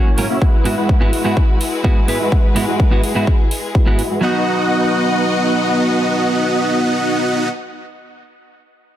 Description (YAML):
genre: EDM, festival progressive house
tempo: 126 BPM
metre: 4/4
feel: straight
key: B major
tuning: A4 = 438 Hz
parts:
  - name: clean electric guitar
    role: accompaniment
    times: 0.0-7.5 s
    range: G#2 to B4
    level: -22 LUFS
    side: right 2 dB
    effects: sidechain pumping, dub echo
  - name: warm studio string section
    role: sustained chords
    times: 0.0-7.5 s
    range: B2 to D#5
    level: -24 LUFS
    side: left 3 dB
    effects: vintage 12-bit sampler grit, sidechain pumping
  - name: dense compressed supersaw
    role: riff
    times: 0.0-7.5 s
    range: G#3 to G#5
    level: -18 LUFS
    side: equal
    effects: sidechain pumping, low-pass filter, dub echo
  - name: electronic hi-hat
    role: drums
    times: 0.2-4.1 s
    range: none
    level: -28 LUFS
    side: right 3 dB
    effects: none
  - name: electronic kick drum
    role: drums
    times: 0.4-3.8 s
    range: none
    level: -14 LUFS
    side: equal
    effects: none
room: light reverb, digital ambience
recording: none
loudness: -14 LUFS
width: side -11 dB against mid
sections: 0.0-4.2 A section; 4.2-8.0 B section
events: none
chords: 0.4 Eadd9/G#; 4.2 B